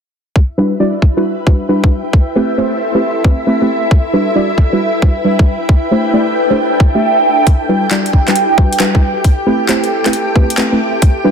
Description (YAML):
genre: UK garage, two-step garage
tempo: 135 BPM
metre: 4/4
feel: swing 66% on 16ths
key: E minor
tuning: A4 = 443 Hz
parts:
  - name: soft string machine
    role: sustained chords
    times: 0.9-11.3 s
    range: E4 to G5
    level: -21 LUFS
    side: equal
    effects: ensemble chorus, sidechain pumping
  - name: electronic kick drum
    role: drums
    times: 0.4-11.1 s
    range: none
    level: -10 LUFS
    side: equal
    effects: none
  - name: ethereal airy pad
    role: texture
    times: 0.9-11.3 s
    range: D4 to C6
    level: -17 LUFS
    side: right 2 dB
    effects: ensemble chorus, built-in reverb, phaser, sidechain pumping
  - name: deep mellow chord stab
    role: stabs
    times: 0.6-11.3 s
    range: G3 to E5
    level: -15 LUFS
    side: equal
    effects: chorus, ping-pong delay
  - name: garage drum kit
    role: drums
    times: 7.5-11.1 s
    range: handclaps, hi-hat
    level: -19 LUFS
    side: left 1 dB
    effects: none
room: moderate plate reverb, RT60 1.4 s, digital ambience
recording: dense, heavily limited modern master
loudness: -10 LUFS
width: side -7 dB against mid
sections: 0.4-11.3 A section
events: none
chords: 0.4 Em7; 1.9 Am9; 3.7 Em7; 5.5 D7sus4; 7.5 Em7; 9.0 Am9; 10.8 Em7